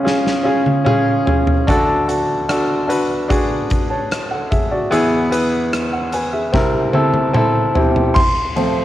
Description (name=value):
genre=pop ballad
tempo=74 BPM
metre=4/4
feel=straight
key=unclear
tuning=A4 = 438 Hz
part: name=clear baby grand piano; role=accompaniment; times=0.0-8.8 s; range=C2 to C6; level=-16 LUFS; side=equal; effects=cassette tape
part: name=huge arena drum kit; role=drums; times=0.1-8.8 s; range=crash cymbal, hi-hat, kick drum, ride cymbal, rim click, snare drum, toms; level=-20 LUFS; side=equal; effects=cassette tape
room=light reverb, studio ambience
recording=home recording on cassette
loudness=-14 LUFS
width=side -13 dB against mid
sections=0.0-8.2 A section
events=drum fill 0.1-1.7, 6.5-8.2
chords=0.0 C#; 1.7 D; 4.9 E; 6.5 C7; 8.2 F